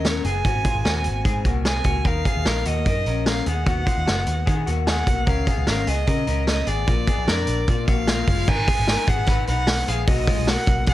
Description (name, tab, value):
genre	jangly indie pop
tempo	150 BPM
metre	4/4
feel	straight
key	unclear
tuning	A4 = 440 Hz
part	warm violin	melody	0.0-10.9 s	Db5 to Ab5	-27 LUFS	right 3 dB	none
part	electric guitar through a small old amp	arpeggios	0.0-10.9 s	Ab3 to Cb5	-27 LUFS	left 6 dB	lush chorus
part	vintage muted picked electric bass	bass	0.0-10.9 s	Gb1 to D#3	-24 LUFS	equal	none
part	vintage drum kit	drums	0.0-10.9 s	crash cymbal, hi-hat, kick drum, snare drum	-22 LUFS	equal	none
room	little or no reverb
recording	dark, warm production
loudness	-19 LUFS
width	side -14 dB against mid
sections	0.0-8.5 A section; 8.5-10.9 B section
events	none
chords	0.5 Ab; 2.1 Ebmadd9; 3.5 B; 5.3 Dbadd9; 6.9 Bb; 8.5 Abm7; 10.1 Bmaj7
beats	0.05 | 0.45 0.85 1.26 1.66 | 2.06 2.46 2.86 3.26 | 3.67 4.07 4.47 4.87 | 5.27 5.67 6.07 6.47 | 6.88 7.28 7.68 8.08 | 8.48 8.88 9.28 9.68 | 10.08 10.48 10.88